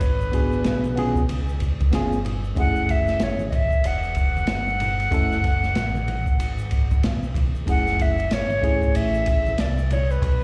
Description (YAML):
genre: hip hop, jazz-hop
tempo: 94 BPM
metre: 4/4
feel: swing 60% on 16ths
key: F# minor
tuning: A4 = 440 Hz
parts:
  - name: silver concert flute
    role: melody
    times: 0.0-10.4 s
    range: B4 to F#5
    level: -28 LUFS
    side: equal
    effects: slapback echo
  - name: deep dub fingered electric bass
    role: bass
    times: 0.0-10.4 s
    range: E1 to C#2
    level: -27 LUFS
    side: equal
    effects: none
  - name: open jazz drum kit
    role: drums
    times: 0.0-10.4 s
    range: hi-hat, kick drum, ride cymbal, snare drum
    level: -26 LUFS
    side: equal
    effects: none
  - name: egg shaker and congas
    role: percussion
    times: 0.0-10.4 s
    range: none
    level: -38 LUFS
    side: equal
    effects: none
  - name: tine electric piano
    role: accompaniment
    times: 0.3-9.5 s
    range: A3 to A4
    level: -29 LUFS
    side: equal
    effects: slapback echo
room: light reverb, small room ambience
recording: live gig heard through the venue's PA, recital hall reverb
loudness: -22 LUFS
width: mono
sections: 0.0-7.7 A section; 7.7-10.4 A section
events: none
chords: 0.0 G#m7b5; 1.3 C#7; 2.6 F#m9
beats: | 0.01 0.65 1.29 1.93 | 2.57 3.21 3.84 4.48 | 5.12 5.76 6.40 7.04 | 7.67 8.31 8.95 9.59 | 10.23